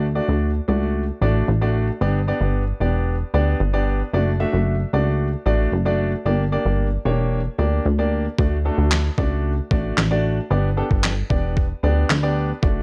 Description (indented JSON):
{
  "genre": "dance-pop",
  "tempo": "113 BPM",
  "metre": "4/4",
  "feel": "straight",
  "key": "unclear",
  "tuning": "A4 = 441 Hz",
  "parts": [
    { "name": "warm concert grand piano", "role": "accompaniment", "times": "0.0-12.8 s", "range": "A3 to E5", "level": "-26 LUFS", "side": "equal", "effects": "sidechain pumping" },
    { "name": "plucky analog bass", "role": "bass", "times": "0.0-12.8 s", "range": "E1 to D2", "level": "-22 LUFS", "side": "equal", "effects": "sidechain pumping" },
    { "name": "crisp 8-bit digital drum machine", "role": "drums", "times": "8.4-12.8 s", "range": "handclaps, kick drum, snare drum", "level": "-23 LUFS", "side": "equal", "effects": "overdrive" }
  ],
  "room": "light reverb",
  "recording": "worn, warbling old tape, cassette tape, warbly pitch drift",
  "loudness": "-21 LUFS",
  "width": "mono",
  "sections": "0.0-12.8 A section",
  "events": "none",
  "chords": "0.0 D; 2.0 G; 4.1 D/F#; 6.3 Gm; 8.4 D; 10.5 G"
}